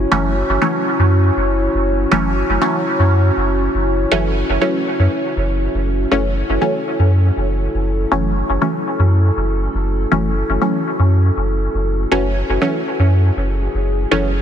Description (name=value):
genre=dub techno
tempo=120 BPM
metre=4/4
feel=straight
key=F# minor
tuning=A4 = 440 Hz
part: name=dark analog pad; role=sustained chords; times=0.0-14.4 s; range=C#4 to C#5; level=-22 LUFS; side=left 1 dB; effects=wide subtle chorus
part: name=warm sub bass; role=bass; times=0.0-14.4 s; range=F#1 to F#2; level=-16 LUFS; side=equal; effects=none
part: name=filtered dub chord stab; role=stabs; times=0.1-14.3 s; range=E3 to C#4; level=-19 LUFS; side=equal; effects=chorus, phaser, dub echo
room=light reverb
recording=dense, heavily limited modern master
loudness=-14 LUFS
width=side -9 dB against mid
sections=0.0-14.4 A section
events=none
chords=0.0 F#m7